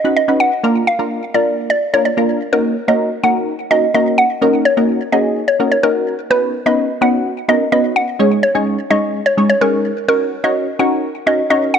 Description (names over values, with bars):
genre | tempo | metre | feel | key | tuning
pop | 127 BPM | 4/4 | straight | Eb minor | A4 = 440 Hz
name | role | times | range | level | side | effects
mallet-like synth pluck | melody | 0.0-11.8 s | Bb4 to F#5 | -16 LUFS | equal | chorus, digital delay
punchy chord stab | accompaniment | 0.0-11.8 s | Ab3 to Db5 | -16 LUFS | equal | chorus, phaser
room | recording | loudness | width
light reverb, digital ambience | none | -13 LUFS | side -7 dB against mid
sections
0.0-2.5 A section; 2.5-11.8 B section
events
none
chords
0.0 Badd9; 0.6 Bb; 2.5 Ebm7; 6.3 Badd9; 8.2 Absus4; 10.1 Ebm7